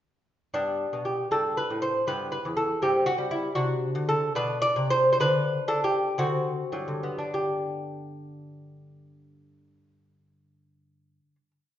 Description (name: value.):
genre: classical, baroque-style dance for lute.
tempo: 48-83 BPM (dotted quarters).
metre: 6/8.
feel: rubato.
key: G major.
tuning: A4 = 440 Hz.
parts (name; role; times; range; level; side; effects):
lute; solo; 0.5-11.8 s; E2 to D5; -24 LUFS; equal; none.
room: wet recital hall reverb, RT60 1.4 s.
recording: recorded in a church or concert hall, nothing above 7.5 kHz.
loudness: -24 LUFS.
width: side -11 dB against mid.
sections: 0.5-7.3 A section; 7.3-11.8 final chord.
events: slowing down 2.8-7.3.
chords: 0.5 G; 1.3 D5/G; 2.1 Em/G; 2.8 C/G; 3.6 D7/C; 4.4 Bm; 5.2 N.C.; 6.2 D7; 7.3 G.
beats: | 0.54 1.32 | 2.08 2.82 | 3.56 4.35 | 5.20 6.18 | 7.35 8.51 | 9.70 10.86.